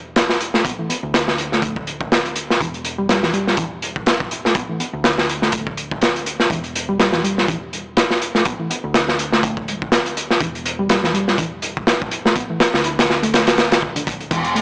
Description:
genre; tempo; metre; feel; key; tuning
breakbeat, breaks; 123 BPM; 4/4; swing 57% on 16ths; E minor; A4 = 440 Hz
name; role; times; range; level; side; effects
hollow-body short-scale picked electric bass; bass; 0.0-14.6 s; E1 to D2; -32 LUFS; equal; none
hollow-body short-scale picked electric bass; riff; 0.2-14.6 s; D3 to E4; -24 LUFS; equal; tape echo
crunchy breakbeat drum kit; drums; 0.2-14.6 s; crash cymbal, hi-hat, kick drum, snare drum; -17 LUFS; equal; none
room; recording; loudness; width
moderate echo chamber reverb, RT60 2.3 s; echo-heavy mix, small speaker sound; -16 LUFS; side -34 dB against mid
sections
0.0-14.3 A section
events
none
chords
0.0 E7(no3)

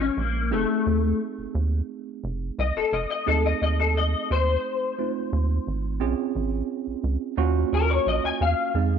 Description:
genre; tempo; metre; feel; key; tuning
straight-eighth soul blues; 87 BPM; 4/4; straight; unclear; A4 = 436 Hz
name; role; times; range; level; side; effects
electric guitar through a small old amp; melody; 0.0-8.7 s; A3 to Ab5; -24 LUFS; left 7 dB; ensemble chorus
tine electric piano; accompaniment; 0.0-9.0 s; Ab3 to C5; -30 LUFS; right 12 dB; overdrive, fast stereo tremolo
rubbery square bass; bass; 0.0-9.0 s; F1 to F2; -24 LUFS; right 1 dB; none
room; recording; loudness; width
moderate echo chamber reverb, RT60 1.8 s; 1960s-style stereo with parts hard left and right; -22 LUFS; side -7 dB against mid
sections
0.0-9.0 A section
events
clean electric guitar solo 0.0-9.0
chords
0.0 Bbm7; 0.5 F7#9; 6.0 Bbm7; 7.4 Ebm7

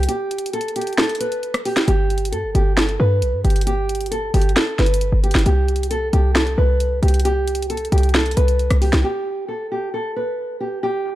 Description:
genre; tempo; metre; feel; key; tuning
hip hop, trap; 134 BPM; 4/4; half-time; unclear; A4 = 440 Hz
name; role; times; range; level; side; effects
nylon-string guitar; melody; 0.0-11.2 s; G4 to B4; -22 LUFS; right 1 dB; tape echo
short 808-style bass; bass; 0.0-9.0 s; G1 to G2; -17 LUFS; equal; none
trap drum kit; drums; 0.0-9.0 s; hi-hat, rim click, snare drum; -22 LUFS; equal; overdrive
room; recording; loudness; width
little or no reverb; dark, warm production; -17 LUFS; side -14 dB against mid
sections
0.0-9.0 A section; 9.0-11.2 B section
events
break 0.1-1.9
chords
0.0 N.C.; 1.9 G; 5.5 C5; 9.0 N.C.

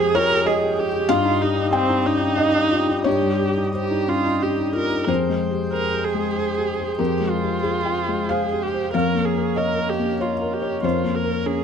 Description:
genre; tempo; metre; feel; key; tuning
neoclassical piano and strings; 87-97 BPM; 3/4; rubato; unclear; A4 = 440 Hz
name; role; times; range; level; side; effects
felt-muted upright piano; accompaniment; 0.0-11.6 s; F2 to G5; -21 LUFS; left 3 dB; none
rich viola; accompaniment; 0.0-11.6 s; C4 to Bb4; -23 LUFS; right 4 dB; none
pedal harmonium; sustained chords; 0.0-11.6 s; G3 to G5; -30 LUFS; right 1 dB; none
room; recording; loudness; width
light reverb; close, detailed microphones; -19 LUFS; side -7 dB against mid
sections
0.0-5.1 A section; 5.1-11.6 B section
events
none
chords
0.0 Fmadd9; 1.1 Cm/G; 5.1 Fmadd9; 8.9 Bbm/F

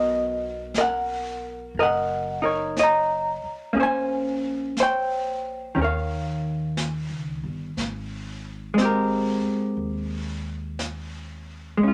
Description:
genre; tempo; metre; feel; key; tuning
jazz ballad; 60 BPM; 4/4; swing 69% on 8ths; unclear; A4 = 439 Hz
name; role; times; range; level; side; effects
vintage hollow-body jazz guitar; accompaniment; 0.0-11.9 s; Eb3 to A#5; -25 LUFS; equal; none
upright bass; bass; 0.0-11.9 s; F#1 to Eb2; -38 LUFS; equal; none
jazz brush drum kit; drums; 0.7-11.9 s; brushed snare drum, hi-hat, snare drum; -38 LUFS; equal; none
room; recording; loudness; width
moderate studio reverb, RT60 0.6 s; none; -26 LUFS; mono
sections
0.0-11.9 A section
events
none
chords
0.0 Bmaj9; 3.7 Bbm9; 5.8 Eb9; 7.8 Abmaj9

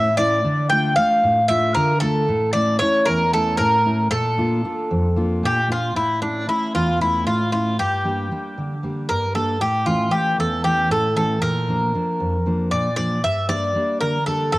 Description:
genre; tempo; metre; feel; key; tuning
greek folk; 230 BPM (eighths); 7/8; straight; A phrygian dominant; A4 = 440 Hz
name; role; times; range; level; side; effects
Greek bouzouki; melody; 0.0-14.6 s; D4 to G5; -20 LUFS; equal; none
fingerpicked steel-string acoustic guitar; accompaniment; 0.0-14.6 s; E2 to F4; -22 LUFS; equal; none
room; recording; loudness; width
light reverb; home recording on cassette; -18 LUFS; side -19 dB against mid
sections
0.0-6.0 A section; 6.0-14.6 B section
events
none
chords
0.4 Dm; 2.3 A; 4.1 Bb; 6.0 A; 7.8 Gm; 9.6 A; 11.4 Bb; 13.2 Gm

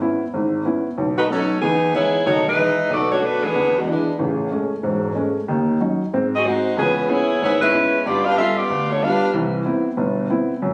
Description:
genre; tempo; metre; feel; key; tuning
jazz; 186 BPM; 4/4; swing 61% on 8ths; E major; A4 = 441 Hz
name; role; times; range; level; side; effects
warm upright piano; accompaniment; 0.0-10.7 s; E1 to F#4; -23 LUFS; equal; none
dark saxophone section; melody; 1.2-4.1, 6.3-9.3 s; D3 to F5; -20 LUFS; equal; none
room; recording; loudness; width
moderate echo chamber reverb, RT60 1.7 s; recorded on a phone in the room, club reverb, compression; -20 LUFS; mono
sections
0.0-1.6 A section; 1.6-10.7 B section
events
none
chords
0.0 C#m7; 1.0 B9; 1.6 Emaj7; 2.9 Bm7; 3.5 E7; 4.2 Amaj7; 5.5 D#m7; 6.1 G#7; 6.8 C#m7; 8.0 G7; 9.3 Cmaj7

